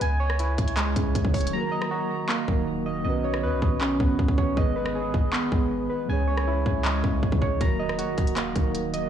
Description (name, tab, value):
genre	hip hop, trap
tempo	158 BPM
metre	4/4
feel	half-time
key	Eb phrygian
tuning	A4 = 440 Hz
part	soft electric-piano-like synth keys	arpeggios	0.0-9.1 s	Db3 to Bb5	-27 LUFS	right 2 dB	chorus, low-pass filter, digital delay
part	warm 808-style bass	bass	0.0-9.1 s	Eb1 to Db3	-29 LUFS	equal	none
part	trap drum kit	drums	0.0-9.0 s	handclaps, hi-hat, kick drum, rim click	-26 LUFS	equal	vintage 12-bit sampler grit, soft clipping on snare
part	mellow tine electric piano	accompaniment	1.5-9.1 s	Eb3 to Db5	-30 LUFS	equal	medium stereo tremolo, low-pass filter
room	digital ambience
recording	blown-out, overdriven recording, overdrive, small room ambience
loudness	-22 LUFS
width	side -9 dB against mid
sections	0.0-9.1 A section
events	hi-hats muted 1.5-7.6; break 1.5-2.3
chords	0.0 Dbm; 1.5 Ebm; 3.1 Badd9; 4.6 Abm; 6.1 Dbm; 7.6 Ebm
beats	| 0.01 0.39 0.77 1.15 | 1.53 1.91 2.29 2.67 | 3.05 3.43 3.81 4.19 | 4.57 4.95 5.33 5.71 | 6.09 6.47 6.85 7.23 | 7.61 7.99 8.37 8.75